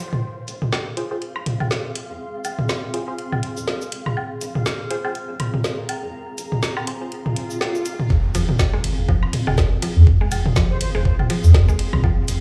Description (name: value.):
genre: minimal techno.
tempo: 122 BPM.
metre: 4/4.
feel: swing 57% on 16ths.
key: F minor.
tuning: A4 = 438 Hz.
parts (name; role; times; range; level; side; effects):
bubbling stepped-filter texture; texture; 0.0-8.1 s; C5 to F5; -40 LUFS; equal; chorus, built-in reverb, sidechain pumping.
electronic toms and woodblock; percussion; 0.1-12.1 s; none; -28 LUFS; equal; dub echo.
granular cloud pad; texture; 0.9-12.4 s; C4 to C6; -34 LUFS; equal; built-in reverb, sidechain pumping.
rubbery square bass; bass; 0.5-12.4 s; F1 to F2; -18 LUFS; equal; sidechain pumping, high-pass filter.
garage drum kit; drums; 0.5-12.4 s; cabasa, hi-hat, ride cymbal, snare drum; -29 LUFS; equal; low-pass filter on hats, low-pass filter on perc, low-pass filter on snare, low-pass filter on cymbals, low-pass filter on room.
filtered dub chord stab; stabs; 1.0-7.1 s; F4 to C5; -35 LUFS; equal; phaser, dub echo.
swell and impact; sound effects; 7.3-10.1 s; none; -31 LUFS; equal; none.
electronic kick drum; drums; 8.1-12.1 s; none; -20 LUFS; equal; none.
mallet-like synth pluck; riff; 8.3-12.1 s; F3 to Ab3; -31 LUFS; equal; chorus, phaser, sidechain pumping, digital delay.
mellow hollow silver concert flute; melody; 10.7-11.1 s; C5; -37 LUFS; equal; dub echo.
room: light reverb.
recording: played on a big sound system in a bare room, stone room reverb, small room ambience.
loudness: -21 LUFS.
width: mono.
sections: 0.2-8.1 A section; 8.1-12.4 B section.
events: break 0.0; swell 7.3-8.1; drop 8.1-12.4; impact 8.1-10.1.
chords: 0.2 Fm.